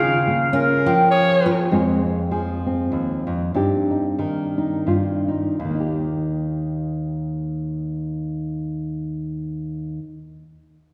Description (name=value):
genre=acoustic folk duo or small band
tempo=80-101 BPM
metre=3/4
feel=swing 56% on 8ths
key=Eb mixolydian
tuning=A4 = 440 Hz
part: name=pedal steel guitar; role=melody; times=0.0-1.4 s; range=F5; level=-25 LUFS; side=equal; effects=none
part: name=nylon-string guitar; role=accompaniment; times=0.0-10.2 s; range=Eb2 to Bb4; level=-24 LUFS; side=equal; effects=none
part: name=mandolin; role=arpeggios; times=0.0-1.7 s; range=F4 to Ab4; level=-25 LUFS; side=equal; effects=none
part: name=bright clarinet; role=second line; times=0.5-1.7 s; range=Bb4 to Db5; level=-22 LUFS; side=equal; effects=none
room=wet concert hall reverb, RT60 2.3 s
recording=recorded in a church or concert hall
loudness=-22 LUFS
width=mono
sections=0.0-1.7 A section; 1.7-5.6 B section; 5.6-10.1 C section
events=slowing down 1.7-5.6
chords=0.0 Db6; 1.7 Fm; 3.5 Cm/G; 5.6 Eb